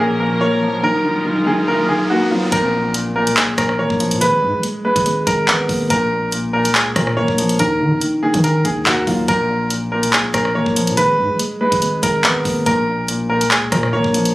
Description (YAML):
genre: hip hop, drill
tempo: 142 BPM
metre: 4/4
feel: half-time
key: Bb phrygian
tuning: A4 = 440 Hz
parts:
  - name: clear upright piano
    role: melody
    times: 0.0-14.3 s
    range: F4 to Db5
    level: -18 LUFS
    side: right 1 dB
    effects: none
  - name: dark concert grand piano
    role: accompaniment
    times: 0.0-14.3 s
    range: Bb2 to Cb4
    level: -20 LUFS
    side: left 1 dB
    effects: none
  - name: dark studio string section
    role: sustained chords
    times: 0.0-2.5 s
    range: F3 to Bb4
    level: -22 LUFS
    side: left 1 dB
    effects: none
  - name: riser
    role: sound effects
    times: 0.5-2.5 s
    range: none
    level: -27 LUFS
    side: equal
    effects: none
  - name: long sustained 808-style bass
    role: bass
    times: 2.5-14.3 s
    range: Ab1 to Eb3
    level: -24 LUFS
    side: equal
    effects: none
  - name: drill drum kit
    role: drums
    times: 2.5-14.3 s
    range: handclaps, hi-hat, kick drum, rim click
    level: -18 LUFS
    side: equal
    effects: none
room: light reverb, small room ambience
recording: recorded on a phone in the room, studio ambience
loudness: -14 LUFS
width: side -18 dB against mid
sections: 0.0-2.5 A section; 2.5-14.3 B section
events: riser 0.5-2.5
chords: 0.0 Bbm; 0.8 Ebmadd9; 2.5 Bbm; 4.2 Abmadd9; 5.9 Bbm; 7.6 Ebm; 9.3 Bbm; 11.0 Abmadd9; 12.7 Bbm